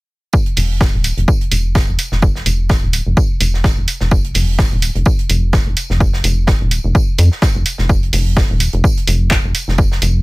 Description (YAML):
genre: minimal techno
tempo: 127 BPM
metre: 4/4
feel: swing 56% on 16ths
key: unclear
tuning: A4 = 440 Hz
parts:
  - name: electronic kick drum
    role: drums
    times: 0.3-9.9 s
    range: none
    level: -14 LUFS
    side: equal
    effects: none
  - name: modern studio drum kit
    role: drums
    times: 0.3-10.1 s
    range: hi-hat, snare drum, tambourine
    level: -27 LUFS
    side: right 2 dB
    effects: high-pass filter on hats, high-pass filter on snare, high-pass filter on perc, high-pass filter on room
  - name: rubbery square bass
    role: bass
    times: 0.6-10.2 s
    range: Eb1 to F2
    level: -15 LUFS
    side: equal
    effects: tube saturation, sidechain pumping
  - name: punchy analog drum machine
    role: drums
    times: 0.6-10.1 s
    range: handclaps, hi-hat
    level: -18 LUFS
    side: right 2 dB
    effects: none
room: little or no reverb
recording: none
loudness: -12 LUFS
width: side -23 dB against mid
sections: 0.3-10.2 A section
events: none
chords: none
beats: | 0.34 0.81 1.28 1.75 | 2.23 2.70 3.17 3.64 | 4.11 4.59 5.06 5.53 | 6.00 6.48 6.95 7.42 | 7.89 8.37 8.84 9.31 | 9.78